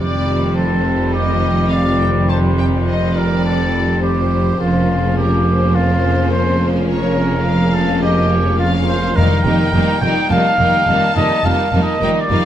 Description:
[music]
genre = cinematic, heroic adventure film score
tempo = 105 BPM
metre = 4/4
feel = straight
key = unclear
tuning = A4 = 442 Hz
[part]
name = warm symphonic violin section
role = melody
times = 0.0-12.4 s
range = Bb4 to A5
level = -25 LUFS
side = left 4 dB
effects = none
[part]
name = warm symphonic violin section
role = second line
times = 0.0-12.4 s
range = G3 to Eb4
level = -23 LUFS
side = left 1 dB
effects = none
[part]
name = warm symphonic viola section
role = accompaniment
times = 0.0-12.4 s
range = C3 to G3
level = -23 LUFS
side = left 1 dB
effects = none
[part]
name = clear trumpet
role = stabs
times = 0.0-12.4 s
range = F4 to G5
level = -20 LUFS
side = equal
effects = none
[part]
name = rich studio cello section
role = bass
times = 0.0-12.4 s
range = F2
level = -19 LUFS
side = right 1 dB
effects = none
[part]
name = rich studio double bass section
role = bass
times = 0.0-12.4 s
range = F1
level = -20 LUFS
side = right 1 dB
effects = none
[part]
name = timpani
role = percussion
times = 0.0-0.8, 9.2-10.0 s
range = F2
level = -21 LUFS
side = left 1 dB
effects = none
[sound]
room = moderate recital hall reverb, RT60 1.4 s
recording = none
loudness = -13 LUFS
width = side -11 dB against mid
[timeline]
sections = 0.0-12.4 A section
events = none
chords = 0.0 Cm/F; 4.6 Bbmadd9/F; 9.2 Ebadd9/F

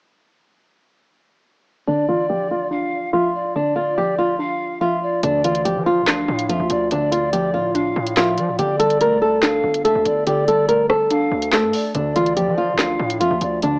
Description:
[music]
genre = hip hop, drill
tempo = 143 BPM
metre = 4/4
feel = half-time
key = D minor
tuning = A4 = 440 Hz
[part]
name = flamenco guitar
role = melody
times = 1.9-13.8 s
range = D4 to Bb4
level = -19 LUFS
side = equal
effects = low-pass filter
[part]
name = reedy pan flute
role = second line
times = 1.9-13.8 s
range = D5 to F5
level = -24 LUFS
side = equal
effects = cassette tape, analog delay
[part]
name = warbly dusty pluck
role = accompaniment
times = 1.9-13.8 s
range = D3 to D4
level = -26 LUFS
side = equal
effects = chorus, low-pass filter, cassette tape
[part]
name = distorted 808-style bass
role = bass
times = 5.2-13.8 s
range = F1 to F3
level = -28 LUFS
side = equal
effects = distortion
[part]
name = drill drum kit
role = drums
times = 5.2-13.7 s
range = handclaps, hi-hat, rim click, snare drum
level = -22 LUFS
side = equal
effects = overdrive, cassette tape
[sound]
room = moderate spring reverb, RT60 1.7 s, small room ambience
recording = home recording on cassette, small speaker sound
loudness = -16 LUFS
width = side -38 dB against mid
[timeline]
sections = 1.9-5.2 A section; 5.2-13.8 B section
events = filter sweep 1.9-5.2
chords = 1.9 Dmadd9; 8.6 Gsus2; 11.9 Dmadd9

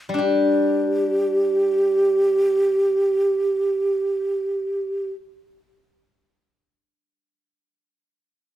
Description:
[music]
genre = chinese traditional, Chinese chamber ensemble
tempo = free time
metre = none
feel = none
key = unclear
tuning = A4 = 440 Hz
[part]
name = steel-string zither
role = accompaniment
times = 0.1-6.2 s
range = G3 to G4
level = -22 LUFS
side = left 3 dB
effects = none
[part]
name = mellow xiao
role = melody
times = 0.2-5.1 s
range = G4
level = -19 LUFS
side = right 1 dB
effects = none
[sound]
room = light reverb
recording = close, detailed microphones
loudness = -18 LUFS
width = side -13 dB against mid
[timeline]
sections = 0.2-4.4 A section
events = none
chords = none

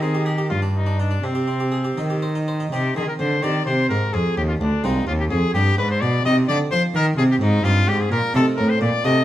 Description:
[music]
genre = classical, baroque-style sonata movement with continuo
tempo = 85 BPM (dotted quarters)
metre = 6/8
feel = straight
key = C minor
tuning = A4 = 440 Hz
[part]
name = clear trumpet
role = melody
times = 0.0-9.2 s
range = C4 to Eb5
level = -23 LUFS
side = left 3 dB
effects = none
[part]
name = harpsichord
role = accompaniment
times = 0.0-9.2 s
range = C2 to C5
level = -25 LUFS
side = right 1 dB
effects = none
[part]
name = rich cello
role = bass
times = 0.0-9.2 s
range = C2 to F3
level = -20 LUFS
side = equal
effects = none
[sound]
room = moderate recital hall reverb, RT60 1.3 s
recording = close, detailed microphones, vinyl crackle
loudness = -18 LUFS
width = side -13 dB against mid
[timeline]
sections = 0.0-2.7 A section; 2.7-9.2 B section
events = none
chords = 0.0 Cm/Eb; 0.5 G5; 1.2 Cm; 4.1 Fm; 5.5 G; 6.3 Cm; 8.3 Adim

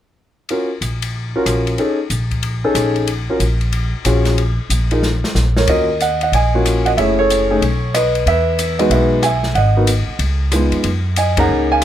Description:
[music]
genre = jazz piano trio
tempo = 186 BPM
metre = 4/4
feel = swing 64% on 8ths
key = unclear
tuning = A4 = 437 Hz
[part]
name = warm grand piano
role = melody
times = 0.5-11.8 s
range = G#3 to Bb5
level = -16 LUFS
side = equal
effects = none
[part]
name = open jazz drum kit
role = drums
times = 0.5-11.8 s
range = hi-hat, kick drum, ride cymbal, rim click, snare drum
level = -23 LUFS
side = left 3 dB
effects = none
[part]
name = upright bass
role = bass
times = 0.8-11.8 s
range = Gb1 to Gb2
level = -18 LUFS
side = equal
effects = none
[sound]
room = light reverb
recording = close, detailed microphones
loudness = -14 LUFS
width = side -11 dB against mid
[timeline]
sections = 0.5-5.7 A section; 5.7-11.8 B section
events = drum fill 5.0-5.7; band accent 11.3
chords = 0.5 Bbm; 5.7 Ebm7; 7.0 Gbm7; 7.6 B7; 8.3 Emaj7; 9.6 Ab7(no3); 10.2 Db7; 10.8 Gb69

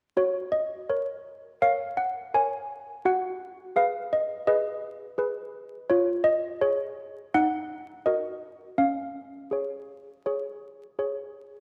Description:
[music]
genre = classical, tune for handbells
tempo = 83 BPM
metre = 4/4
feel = straight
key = F# major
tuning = A4 = 440 Hz
[part]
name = malleted handbells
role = solo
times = 0.2-11.6 s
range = C#4 to G#5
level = -28 LUFS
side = equal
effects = none
[sound]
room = moderate scoring stage reverb, RT60 2.1 s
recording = vinyl crackle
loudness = -28 LUFS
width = mono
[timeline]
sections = 0.2-11.6 A section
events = none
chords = 0.2 F#; 3.1 G#m7/F#; 5.9 C#/E#; 7.4 D#m; 8.8 C#

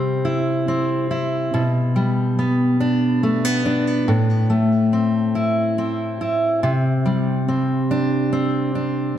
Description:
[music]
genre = pop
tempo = 47 BPM (dotted quarters)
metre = 6/8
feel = straight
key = C major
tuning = A4 = 441 Hz
[part]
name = fingerpicked steel-string acoustic guitar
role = solo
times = 0.0-9.2 s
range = A2 to E4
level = -17 LUFS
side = equal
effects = digital delay
[sound]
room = moderate scoring stage reverb, RT60 1.5 s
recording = none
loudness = -17 LUFS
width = side -10 dB against mid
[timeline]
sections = 0.0-9.2 A section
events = none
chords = 0.0 C; 1.5 G/B; 4.1 Am; 6.6 Csus2

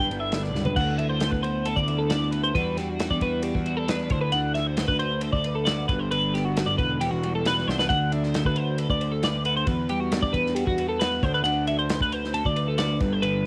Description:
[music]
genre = math rock and midwest emo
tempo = 135 BPM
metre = 4/4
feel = straight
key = unclear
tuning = A4 = 441 Hz
[part]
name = twelve-string electric guitar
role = accompaniment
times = 0.0-13.5 s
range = E2 to C5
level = -31 LUFS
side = equal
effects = analog chorus, cassette tape
[part]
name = twelve-string electric guitar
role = arpeggios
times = 0.0-13.5 s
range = F#4 to G5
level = -29 LUFS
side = equal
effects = analog chorus, cassette tape
[part]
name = fuzz picked electric bass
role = bass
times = 0.0-13.5 s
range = E1 to E2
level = -31 LUFS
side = equal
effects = overdrive
[part]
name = loose indie drum kit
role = drums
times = 0.0-13.3 s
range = crash cymbal, kick drum, ride cymbal, snare drum, toms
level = -32 LUFS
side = equal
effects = none
[sound]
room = studio reverb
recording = home recording on cassette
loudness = -25 LUFS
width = mono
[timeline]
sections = 0.8-13.5 A section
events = drum fill 0.6, 7.7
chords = 0.0 G; 0.8 D7sus2; 2.6 Em9; 4.1 D13; 5.9 Gmaj7; 6.8 Em9; 7.9 D13; 9.7 Em9; 11.2 D13

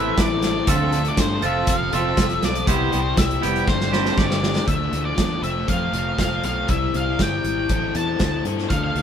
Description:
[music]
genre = indie rock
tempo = 120 BPM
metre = 4/4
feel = straight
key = A minor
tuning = A4 = 440 Hz
[part]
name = octave-fuzz lead guitar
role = melody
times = 0.0-9.0 s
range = C5 to A5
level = -26 LUFS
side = equal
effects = distortion
[part]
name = tonewheel organ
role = sustained chords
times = 0.0-4.7 s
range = C3 to G4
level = -34 LUFS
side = right 2 dB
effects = none
[part]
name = raw garage guitar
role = riff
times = 0.0-9.0 s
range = E3 to A4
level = -25 LUFS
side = left 5 dB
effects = overdrive
[part]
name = twangy electric guitar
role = riff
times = 0.0-4.3 s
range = D3 to B4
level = -25 LUFS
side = right 6 dB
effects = none
[part]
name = fingered electric bass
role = bass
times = 0.0-9.0 s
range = F1 to G2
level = -26 LUFS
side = right 1 dB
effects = none
[part]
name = loose indie drum kit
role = drums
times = 0.2-9.0 s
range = hi-hat, kick drum, snare drum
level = -23 LUFS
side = right 1 dB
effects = none
[sound]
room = moderate stone room reverb, RT60 1.0 s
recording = band playing live in one room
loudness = -18 LUFS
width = side -8 dB against mid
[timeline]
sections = 0.0-4.7 A section; 4.7-9.0 B section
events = drum fill 3.7-4.7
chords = 0.0 Amadd9; 0.7 Dm7; 1.4 F; 2.7 Cmaj7; 3.7 Gsus4; 4.7 Dm; 5.4 F; 6.7 C; 7.7 Am

